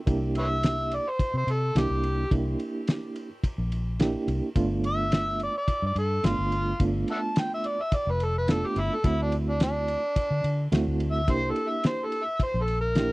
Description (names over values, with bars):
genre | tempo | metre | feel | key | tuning
straight-eighth soul blues | 107 BPM | 4/4 | straight | unclear | A4 = 437 Hz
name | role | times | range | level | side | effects
reed electric piano | accompaniment | 0.1-13.1 s | A3 to G4 | -30 LUFS | right 3 dB | fast tremolo
vintage muted fingered electric bass | bass | 0.1-13.1 s | F1 to D3 | -28 LUFS | equal | none
cloth-damped thuddy drum kit | drums | 0.1-13.1 s | kick drum, ride cymbal, snare drum | -26 LUFS | equal | none
overdriven harmonica | melody | 0.4-13.1 s | D4 to A5 | -29 LUFS | equal | none
room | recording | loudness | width
little or no reverb | dry, close 1970s-style studio recording | -24 LUFS | side -21 dB against mid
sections
0.0-13.1 A section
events
harmonica solo 0.0-13.1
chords
0.1 C9; 4.6 G9; 9.0 D9; 11.3 C9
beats
| 0.07 0.63 1.19 1.76 | 2.32 2.88 3.44 4.00 | 4.56 5.12 5.68 6.24 | 6.80 7.36 7.92 8.48 | 9.04 9.60 10.16 10.72 | 11.28 11.84 12.40 12.96